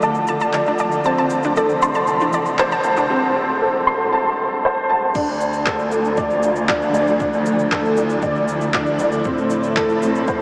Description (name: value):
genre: piano and strings electronica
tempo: 117 BPM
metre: 4/4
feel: straight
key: D minor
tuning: A4 = 444 Hz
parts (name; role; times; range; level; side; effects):
- granular cloud pad; sustained chords; 0.0-10.4 s; C3 to A4; -28 LUFS; equal; built-in reverb, subtle chorus
- analog pluck; arpeggios; 0.0-3.0 s; D4 to A5; -27 LUFS; equal; chorus, sidechain pumping, diffuse ambient delay
- dark upright piano; riff; 0.0-10.4 s; C4 to D6; -20 LUFS; equal; ensemble chorus, diffuse ambient delay
- minimal click drum kit; drums; 0.0-10.4 s; crash cymbal, handclaps, shaker; -31 LUFS; equal; overdrive
- warm chamber cello section; bass; 5.2-10.4 s; D2 to A2; -26 LUFS; equal; sidechain pumping
- electronic kick drum; drums; 5.2-10.4 s; none; -32 LUFS; equal; none
room: wet huge ambient reverb, RT60 9.1 s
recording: dreamy mix soaked in reverb, small speaker sound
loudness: -19 LUFS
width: mono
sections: 0.0-5.2 A section; 5.2-10.4 B section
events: build-up 0.0-5.2; drop 5.2-10.4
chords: 0.0 Dm; 1.1 Am; 5.2 Dm; 9.3 Am